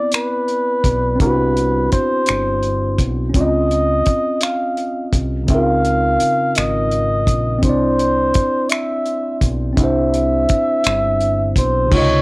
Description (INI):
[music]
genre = slow six-eight R&B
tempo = 56 BPM (dotted quarters)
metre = 6/8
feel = straight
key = unclear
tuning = A4 = 440 Hz
[part]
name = breathy flugelhorn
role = melody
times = 0.0-12.2 s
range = B4 to F5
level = -18 LUFS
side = equal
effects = cassette tape
[part]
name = tine electric piano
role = accompaniment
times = 0.0-12.2 s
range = C3 to Eb5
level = -20 LUFS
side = equal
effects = cassette tape
[part]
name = cloth-damped thuddy drum kit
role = drums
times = 0.1-12.1 s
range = crash cymbal, finger snaps, hi-hat, kick drum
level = -18 LUFS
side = equal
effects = cassette tape
[part]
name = deep dub fingered electric bass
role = bass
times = 0.9-12.2 s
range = G1 to Db2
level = -20 LUFS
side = equal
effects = none
[sound]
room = moderate small room reverb, RT60 0.6 s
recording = home recording on cassette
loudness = -14 LUFS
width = side -24 dB against mid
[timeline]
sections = 0.0-11.9 A section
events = none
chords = 0.0 Cmaj9; 3.3 Dbmaj9; 7.6 Cmaj9